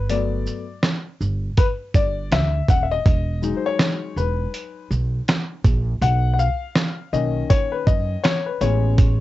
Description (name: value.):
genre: hip hop, jazz-hop.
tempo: 81 BPM.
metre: 4/4.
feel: swing 60% on 16ths.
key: E major.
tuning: A4 = 440 Hz.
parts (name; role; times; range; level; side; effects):
warm grand piano; accompaniment; 0.0-9.2 s; D#3 to F#5; -24 LUFS; left 7 dB; none.
upright bass; bass; 0.0-9.2 s; D#1 to F#2; -22 LUFS; right 1 dB; none.
dusty soul sampler-style drum kit; drums; 0.1-9.2 s; hi-hat, kick drum, shaker, snare drum; -18 LUFS; right 1 dB; cassette tape.
room: little or no reverb.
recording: home recording on cassette, nothing above 7.8 kHz.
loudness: -18 LUFS.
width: side -15 dB against mid.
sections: 0.0-9.2 A section.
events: grand piano solo 0.0-9.2.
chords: 0.0 Gmaj9; 3.1 Emaj9; 6.0 Bmaj9; 8.6 Amaj9.